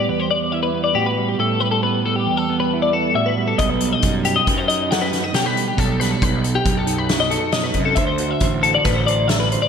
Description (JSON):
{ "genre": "math rock and midwest emo", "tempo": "137 BPM", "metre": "5/4", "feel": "straight", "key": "E minor", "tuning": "A4 = 442 Hz", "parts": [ { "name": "mellow electric guitar", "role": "accompaniment", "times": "0.0-9.7 s", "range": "E2 to D5", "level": "-22 LUFS", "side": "right 6 dB", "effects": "vibrato effect" }, { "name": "twelve-string electric guitar", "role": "arpeggios", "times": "0.0-9.7 s", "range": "G4 to F#5", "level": "-20 LUFS", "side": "left 5 dB", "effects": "analog chorus, ping-pong delay" }, { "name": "fuzz picked electric bass", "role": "bass", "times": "3.6-9.6 s", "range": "A1 to F#2", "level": "-24 LUFS", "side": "equal", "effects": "overdrive" }, { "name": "loose indie drum kit", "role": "drums", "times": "3.6-9.6 s", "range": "hi-hat, kick drum, snare drum", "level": "-22 LUFS", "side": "equal", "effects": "gated reverb" } ], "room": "wet lush hall reverb, RT60 1.9 s", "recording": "bright 1980s-style digital production", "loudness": "-16 LUFS", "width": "side -7 dB against mid", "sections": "0.0-9.7 A section", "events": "none", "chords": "0.0 Em9; 3.6 B7b13; 8.0 D9" }